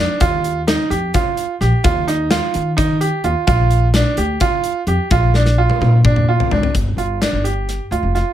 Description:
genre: progressive instrumental, band music in an uneven meter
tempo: 257 BPM (eighths)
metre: 7/8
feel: straight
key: unclear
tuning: A4 = 441 Hz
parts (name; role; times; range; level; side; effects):
- bright baby grand piano; arpeggios; 0.0-8.3 s; D4 to G4; -19 LUFS; right 4 dB; none
- upright bass; bass; 0.0-8.2 s; F1 to Eb3; -17 LUFS; equal; none
- gated 80s drum kit; drums; 0.2-8.3 s; hi-hat, kick drum, snare drum, toms; -19 LUFS; left 2 dB; none
room: light reverb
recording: none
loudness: -14 LUFS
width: side -11 dB against mid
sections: 0.0-6.7 A section; 6.7-8.3 B section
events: drum fill 0.0, 5.3-6.7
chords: 0.2 Ebsus2; 3.5 Bb; 6.7 G5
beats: | 0.21 0.44 0.68 0.91 1.14 1.38 1.61 | 1.84 2.08 2.31 2.54 2.78 3.01 3.25 | 3.48 3.71 3.94 4.18 4.41 4.64 4.88 | 5.11 5.34 5.58 5.81 6.05 6.28 6.51 | 6.75 6.98 7.21 7.45 7.68 7.91 8.15

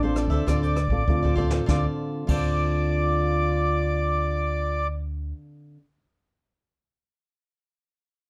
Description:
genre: samba and choro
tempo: 99 BPM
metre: 4/4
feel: straight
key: D minor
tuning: A4 = 440 Hz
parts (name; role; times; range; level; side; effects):
- mellow accordion; melody; 0.0-4.9 s; C5 to E5; -30 LUFS; equal; none
- mellow trombone; second line; 0.0-4.9 s; D4 to F4; -33 LUFS; equal; none
- cavaquinho; accompaniment; 0.0-5.8 s; F4 to D5; -38 LUFS; equal; none
- nylon-string guitar; accompaniment; 0.0-5.8 s; A2 to A4; -35 LUFS; equal; none
- deep dub fingered electric bass; bass; 0.0-5.3 s; A1 to D2; -28 LUFS; equal; none
- jazz brush drum kit; drums; 0.2-2.5 s; crash cymbal, hi-hat, kick drum, rim click, snare drum; -30 LUFS; equal; none
room: light reverb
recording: dark, warm production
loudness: -24 LUFS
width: mono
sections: 0.0-1.7 A section; 1.7-4.1 B section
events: drum fill 1.1-1.7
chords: 0.0 Dm7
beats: 0.47 1.08 | 1.68 2.29 2.90 3.50

